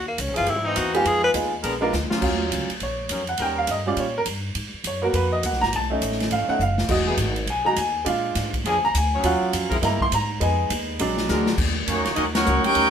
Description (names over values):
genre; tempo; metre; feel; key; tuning
jazz, big band swing; 205 BPM; 4/4; swing 62% on 8ths; Eb minor; A4 = 440 Hz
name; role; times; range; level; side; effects
clear tenor saxophone; melody; 0.0-1.3 s; Bb3 to Cb5; -22 LUFS; left 1 dB; none
upright bass; bass; 0.0-12.9 s; E1 to Bb2; -28 LUFS; left 1 dB; none
swinging big-band drum kit; drums; 0.2-12.8 s; crash cymbal, hi-hat, kick drum, ride cymbal, snare drum; -27 LUFS; equal; none
bright trombone section; sustained chords; 0.3-3.8, 7.1-12.9 s; Fb3 to Db5; -28 LUFS; left 2 dB; none
bright upright piano; accompaniment; 0.9-11.6 s; Gb3 to C6; -23 LUFS; right 1 dB; none
mellow trumpet section; melody; 11.9-12.9 s; Bb3 to G5; -20 LUFS; equal; none
clear trombone section; second line; 11.9-12.9 s; Gb3 to G4; -27 LUFS; right 3 dB; none
room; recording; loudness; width
moderate studio reverb, RT60 0.6 s; band playing live in one room; -20 LUFS; side -8 dB against mid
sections
0.0-2.2 A section; 2.2-11.6 A section; 11.6-12.9 B section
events
tenor saxophone solo 0.0-2.2; drum fill 1.9, 6.6, 11.3; upright piano solo 2.2-11.6; band accent 12.3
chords
0.5 C7alt; 1.1 Fm7b5; 1.6 Bb7b9; 2.2 Ebm7; 3.4 Eb7; 4.6 Abm7; 5.7 B7; 6.9 Emaj7; 8.1 Bb7; 9.2 Ebm7; 9.8 C7b13/G; 10.4 Fm7b5; 11.0 Bbaug7; 11.6 Ebm7